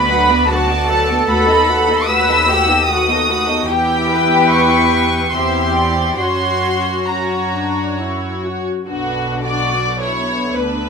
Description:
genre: classical, slow romantic movement for string orchestra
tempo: 66-77 BPM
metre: 3/4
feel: rubato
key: B minor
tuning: A4 = 440 Hz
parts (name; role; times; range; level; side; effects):
- warm symphonic violin section; melody; 0.0-10.9 s; B3 to E6; -18 LUFS; right 1 dB; none
- rich studio violin section; second line; 0.0-10.9 s; F#4 to G5; -20 LUFS; left 2 dB; none
- dark symphonic viola section; accompaniment; 0.0-10.9 s; D3 to F#4; -22 LUFS; equal; none
- rich symphonic cello section; bass; 0.0-10.9 s; D2 to B4; -20 LUFS; equal; none
- warm symphonic double bass section; bass; 0.0-10.9 s; B1 to F#2; -23 LUFS; right 2 dB; none
room: moderate large studio reverb, RT60 1.1 s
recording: minimal, uncompressed stereo recording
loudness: -13 LUFS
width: side -5 dB against mid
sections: 0.0-8.9 A section; 8.9-10.9 B section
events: none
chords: 0.0 Bm/D; 1.3 B7/D#; 3.7 Em; 5.3 C/E; 6.2 F#; 8.9 Bm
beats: 0.50 | 1.27 2.09 2.89 | 3.68 4.53 5.34 | 6.21 7.11 8.00 | 8.88 9.74 10.55

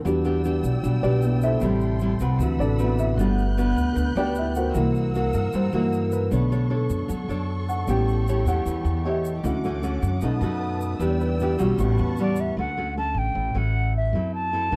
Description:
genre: bossa nova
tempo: 153 BPM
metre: 4/4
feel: straight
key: D major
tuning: A4 = 436 Hz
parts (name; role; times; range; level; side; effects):
- dark grand piano; accompaniment; 0.0-12.6 s; C3 to G5; -30 LUFS; equal; none
- nylon-string guitar; accompaniment; 0.0-14.8 s; A2 to C#5; -29 LUFS; equal; none
- dark symphonic string section; sustained chords; 0.0-12.6 s; C#4 to G6; -38 LUFS; equal; none
- upright bass; bass; 0.1-14.8 s; G1 to C3; -27 LUFS; equal; none
- egg shaker; percussion; 0.1-12.6 s; none; -52 LUFS; equal; none
- silver concert flute; melody; 12.2-14.8 s; D5 to A5; -30 LUFS; equal; none
room: light reverb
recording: dry, close 1970s-style studio recording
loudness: -24 LUFS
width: mono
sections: 0.0-12.6 A section; 12.6-14.8 B section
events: grand piano solo 0.0-12.6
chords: 0.1 Em7; 1.6 Am7; 2.4 D13; 3.2 Gmaj7; 4.7 C7#11; 6.3 Bm9; 7.9 A7; 9.4 Dmaj7; 10.2 B7; 11.0 Em7; 11.8 A13; 12.6 Dmaj7; 14.1 F#m7b5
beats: | 0.05 0.44 0.83 1.23 | 1.62 2.01 2.40 2.79 | 3.18 3.57 3.96 4.36 | 4.75 5.14 5.53 5.92 | 6.31 6.70 7.09 7.49 | 7.88 8.27 8.66 9.05 | 9.44 9.83 10.22 10.61 | 11.01 11.40 11.79 12.18 | 12.57 12.96 13.35 13.74 | 14.14 14.53

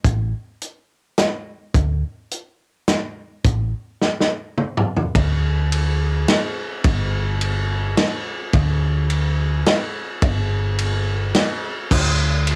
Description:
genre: folk rock and heartland rock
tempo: 106 BPM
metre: 3/4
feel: straight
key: unclear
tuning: A4 = 440 Hz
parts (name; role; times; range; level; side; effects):
- hollow-body short-scale picked electric bass; bass; 0.0-12.6 s; G1 to D2; -22 LUFS; equal; none
- natural country drum kit; drums; 0.0-12.6 s; crash cymbal, hi-hat, kick drum, ride cymbal, snare drum, toms; -22 LUFS; equal; none
room: little or no reverb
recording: home recording on cassette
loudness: -21 LUFS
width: mono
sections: 0.0-5.2 A section; 5.2-12.6 B section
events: drum fill 4.0-5.2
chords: none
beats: | 0.05 0.62 1.19 | 1.76 2.32 2.89 | 3.46 4.02 4.59 | 5.15 5.72 6.28 | 6.85 7.41 7.97 | 8.54 9.10 9.66 | 10.23 10.79 11.35 | 11.91 12.48

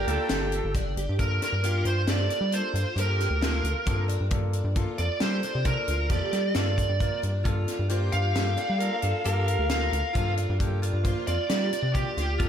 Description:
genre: progressive instrumental, band music in an uneven meter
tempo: 134 BPM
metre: 7/4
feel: straight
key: G minor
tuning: A4 = 440 Hz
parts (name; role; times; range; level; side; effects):
- smooth overdriven lead guitar; melody; 0.0-12.5 s; G4 to F5; -30 LUFS; right 1 dB; slapback echo
- growling alto saxophone; second line; 0.0-0.9, 7.4-12.5 s; F4 to Bb4; -34 LUFS; right 3 dB; slapback echo, ping-pong delay
- picked plugged-in twelve-string acoustic guitar; arpeggios; 0.0-12.5 s; C4 to G4; -35 LUFS; right 1 dB; ensemble chorus
- rubbery square bass; bass; 0.0-12.5 s; G1 to G3; -27 LUFS; equal; none
- clear concert grand piano; accompaniment; 0.1-12.5 s; Bb3 to C5; -37 LUFS; left 5 dB; none
- tight funk drum kit; drums; 0.1-12.5 s; hi-hat, kick drum, snare drum; -31 LUFS; equal; none
room: moderate recital hall reverb, RT60 1.6 s, small room ambience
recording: big arena sound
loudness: -24 LUFS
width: side -9 dB against mid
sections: 0.0-1.2 A section; 1.2-12.5 B section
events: none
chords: 0.0 Gm7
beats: 0.30 0.75 | 1.19 1.64 2.08 2.53 2.97 3.42 3.87 | 4.31 4.76 5.21 5.66 6.10 6.55 7.00 | 7.45 7.90 8.35 8.80 9.25 9.70 10.15 | 10.60 11.05 11.50 11.95 12.40

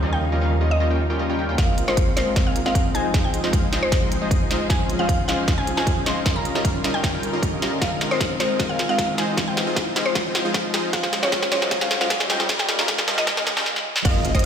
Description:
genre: future bass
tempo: 154 BPM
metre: 4/4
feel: half-time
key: Ab major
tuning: A4 = 439 Hz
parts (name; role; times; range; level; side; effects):
- mallet-like synth pluck; melody; 0.0-14.5 s; C5 to C6; -27 LUFS; left 1 dB; chorus, sidechain pumping, dub echo
- rich studio string section; sustained chords; 0.0-13.7 s; Db3 to C5; -30 LUFS; left 1 dB; sidechain pumping, low-pass filter
- supersaw stab; riff; 0.0-14.4 s; G3 to Ab5; -25 LUFS; equal; cassette tape, sidechain pumping, low-pass filter, ping-pong delay
- wide detuned saw bass; bass; 0.0-1.6, 14.1-14.4 s; Ab1 to Eb2; -22 LUFS; equal; chorus, sidechain pumping
- electronic kick drum; drums; 1.6-14.4 s; none; -23 LUFS; equal; overdrive
- trap drum kit; drums; 1.6-14.5 s; crash cymbal, hi-hat, snare drum; -25 LUFS; equal; high-pass filter on snare, low-pass filter on snare, high-pass filter on hats, low-pass filter on hats, high-pass filter on cymbals, low-pass filter on cymbals
- riser; sound effects; 2.7-13.7 s; none; -32 LUFS; left 1 dB; none
- wide unison pluck; arpeggios; 14.1-14.4 s; Eb5; -27 LUFS; right 1 dB; sidechain pumping
room: light reverb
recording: played on a big sound system in a bare room, stone room reverb, high-pass filter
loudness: -19 LUFS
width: side -8 dB against mid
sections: 0.0-1.6 A section; 1.6-14.1 B section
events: build-up 1.6-14.1; drum fill 1.6-13.7, 13.7-14.1; filter sweep on supersaw synth 1.6-14.1; filter sweep 1.6-14.1; riser 2.7-13.7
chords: 0.0 Eb9; 1.6 Ab69; 2.9 Fm7; 4.7 Dbmaj9; 6.3 Eb9; 7.8 Ab69; 9.2 Fm7; 10.9 Dbmaj9; 12.5 Eb9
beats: | 0.02 0.41 0.80 1.19 | 1.58 1.97 2.36 2.75 | 3.14 3.53 3.92 4.31 | 4.70 5.09 5.48 5.87 | 6.26 6.65 7.04 7.43 | 7.82 8.21 8.60 8.98 | 9.38 9.77 10.15 10.54 | 10.93 11.32 11.71 12.10 | 12.49 12.88 13.27 13.66 | 14.05 14.44

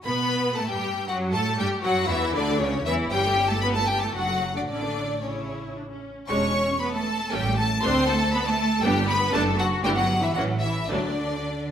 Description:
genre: quick classical-period movement for string orchestra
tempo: 107-121 BPM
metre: 3/4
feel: rubato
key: D major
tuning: A4 = 440 Hz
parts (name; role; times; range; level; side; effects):
- rich studio violin section; melody; 0.0-11.7 s; C#5 to C#6; -27 LUFS; left 2 dB; none
- rich studio violin section; second line; 0.0-11.7 s; C#4 to C#5; -29 LUFS; left 2 dB; none
- rich studio viola section; accompaniment; 0.0-11.2 s; C#3 to F#4; -30 LUFS; right 1 dB; none
- clear studio cello section; bass; 0.0-11.7 s; C#3 to C#4; -29 LUFS; right 2 dB; none
- rich studio double bass section; bass; 0.0-11.4 s; E1 to B2; -30 LUFS; right 2 dB; none
room: wet recital hall reverb, RT60 1.3 s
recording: none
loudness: -22 LUFS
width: side -9 dB against mid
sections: 0.0-11.7 A section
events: none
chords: 0.0 Gmaj9; 1.6 G5; 2.6 C#m; 3.1 A7/G; 4.2 D/F#; 4.7 A; 6.3 E7; 7.3 A; 7.8 D5; 8.8 G; 9.3 D/F#; 9.8 Em7/G; 10.4 A; 10.9 D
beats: | 0.05 0.57 1.09 | 1.59 2.10 2.61 | 3.11 3.63 4.16 | 4.69 5.23 5.76 | 6.29 6.81 7.32 | 7.83 8.33 8.83 | 9.33 9.84 10.36 | 10.90 11.45

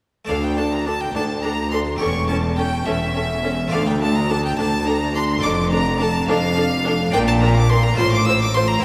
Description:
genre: classical, baroque-style concerto movement with solo episodes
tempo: 70 BPM (dotted quarters)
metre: 6/8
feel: straight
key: D minor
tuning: A4 = 440 Hz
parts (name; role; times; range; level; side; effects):
- harpsichord; accompaniment; 0.2-8.8 s; D2 to D5; -31 LUFS; equal; none
- clear violin; melody; 0.3-8.8 s; E5 to E6; -28 LUFS; equal; none
- rich chamber violin section; melody; 0.3-8.8 s; E5 to E6; -29 LUFS; equal; none
- warm chamber violin section; second line; 0.3-8.6 s; A4 to C5; -29 LUFS; equal; none
- rich symphonic viola section; accompaniment; 0.3-8.6 s; C#4 to F4; -30 LUFS; equal; none
- rich chamber double bass section; bass; 0.3-8.8 s; E1 to D2; -25 LUFS; equal; none
- rich symphonic cello section; bass; 0.3-8.7 s; D2 to Bb2; -26 LUFS; equal; none
room: wet church reverb, RT60 2.9 s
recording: none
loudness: -19 LUFS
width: mono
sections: 0.3-8.8 A section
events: none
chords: 0.3 D5; 2.0 A7/E; 3.7 Dm; 5.4 Dm/F; 7.1 Bbmaj9; 8.0 F/A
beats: | 0.30 1.15 | 2.01 2.87 | 3.72 4.58 | 5.43 6.28 | 7.13 7.98 | 8.83

